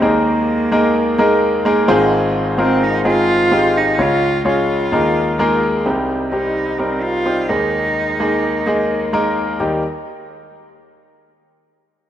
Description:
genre	pop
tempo	128 BPM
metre	4/4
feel	straight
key	Eb mixolydian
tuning	A4 = 442 Hz
part	rich cello	melody	0.0-9.1 s	Bb3 to F4	-19 LUFS	right 1 dB	none
part	clear concert grand piano	accompaniment	0.0-9.8 s	Ab1 to Db5	-15 LUFS	equal	none
room	moderate lush hall reverb, RT60 2.9 s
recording	rough home demo mix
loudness	-14 LUFS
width	side -11 dB against mid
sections	0.0-5.9 A section; 5.9-9.6 B section; 9.6-11.5 C section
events	none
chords	0.0 Ebsus4; 1.9 Ab6; 4.0 Db; 4.9 Ebsus4; 5.9 Cm; 7.5 Ebsus4; 9.6 Eb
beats	| 0.24 0.71 1.18 1.65 | 2.12 2.58 3.05 3.52 | 3.99 4.45 4.92 5.39 | 5.86 6.33 6.79 7.26 | 7.73 8.20 8.67 9.14 | 9.60

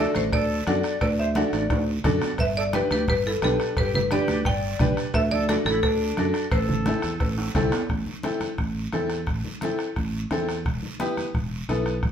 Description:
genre	latin, cumbia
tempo	174 BPM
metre	4/4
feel	straight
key	A minor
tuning	A4 = 440 Hz
part	buzzing marimba with hard mallets	melody	0.0-7.5 s	A4 to G5	-26 LUFS	equal	none
part	bright silver concert flute	second line	0.0-7.5 s	D4 to D5	-32 LUFS	right 1 dB	none
part	bright upright piano	accompaniment	0.0-11.9 s	B3 to B4	-28 LUFS	left 1 dB	none
part	fingered electric bass	bass	0.0-12.1 s	E1 to F#2	-28 LUFS	right 1 dB	none
part	bombo	percussion	0.1-12.1 s	none	-30 LUFS	equal	none
part	guiro	percussion	0.1-12.1 s	none	-41 LUFS	right 4 dB	none
part	congas	percussion	0.2-12.1 s	none	-31 LUFS	right 1 dB	none
part	cowbell and timbales	percussion	0.3-7.8 s	none	-34 LUFS	right 3 dB	none
room	wet studio reverb, RT60 0.7 s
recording	band playing live in one room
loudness	-22 LUFS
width	side -8 dB against mid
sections	0.0-7.9 A section; 7.9-12.1 B section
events	drum fill 1.4-2.4, 7.4-7.9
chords	0.0 D; 2.4 G; 5.1 D; 6.5 Am; 10.7 Em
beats	0.33 0.67 | 1.01 1.36 1.70 2.05 | 2.39 2.73 3.08 3.42 | 3.77 4.11 4.46 4.80 | 5.14 5.49 5.83 6.18 | 6.52 6.86 7.21 7.55 | 7.90 8.24 8.59 8.93 | 9.28 9.62 9.96 10.31 | 10.65 11.00 11.34 11.69 | 12.03

